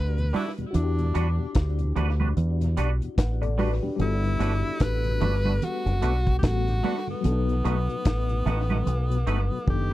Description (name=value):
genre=lovers rock reggae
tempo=74 BPM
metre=4/4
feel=swing 60% on 16ths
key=E minor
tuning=A4 = 439 Hz
part: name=edgy tenor saxophone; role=melody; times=0.0-9.9 s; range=B3 to B4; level=-32 LUFS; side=equal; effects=tape echo
part: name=FM electric piano with auto-pan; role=accompaniment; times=0.0-9.9 s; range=D#3 to F#5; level=-33 LUFS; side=left 5 dB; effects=tape echo
part: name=deep dub fingered electric bass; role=bass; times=0.0-9.9 s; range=F#1 to E2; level=-24 LUFS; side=equal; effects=none
part: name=mellow tonewheel organ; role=accompaniment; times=0.2-9.9 s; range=E2 to F#4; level=-36 LUFS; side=left 5 dB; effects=slow rotary speaker, tape echo
part: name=deep reggae drum kit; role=drums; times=0.2-9.9 s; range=hi-hat, kick drum, snare drum, toms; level=-28 LUFS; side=equal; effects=tape echo
part: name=twangy electric guitar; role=stabs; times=0.3-9.9 s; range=G3 to B4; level=-32 LUFS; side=right 6 dB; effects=ensemble chorus
part: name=congas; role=percussion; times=0.3-9.1 s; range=none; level=-31 LUFS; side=right 6 dB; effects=none
room=little or no reverb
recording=dry, close 1970s-style studio recording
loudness=-23 LUFS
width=side -15 dB against mid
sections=0.0-9.9 A section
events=drum fill 9.7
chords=0.0 Em9; 4.0 Gmaj9; 7.2 B7